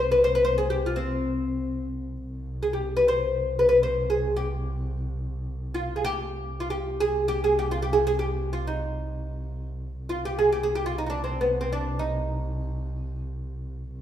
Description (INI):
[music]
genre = Arabic maqam ensemble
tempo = free time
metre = none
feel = none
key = C maqam nahawand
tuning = A4 = 440 Hz
[part]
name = oud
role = melody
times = 0.0-13.2 s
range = B3 to C5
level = -24 LUFS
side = left 1 dB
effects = none
[part]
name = warm double bass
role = drone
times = 0.0-14.0 s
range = C2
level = -31 LUFS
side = right 1 dB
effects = none
[sound]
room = wet recital hall reverb, RT60 1.5 s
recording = minimal, uncompressed stereo recording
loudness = -24 LUFS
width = side -10 dB against mid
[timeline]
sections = 0.0-2.3 A section; 2.3-14.0 A section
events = none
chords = none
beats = free time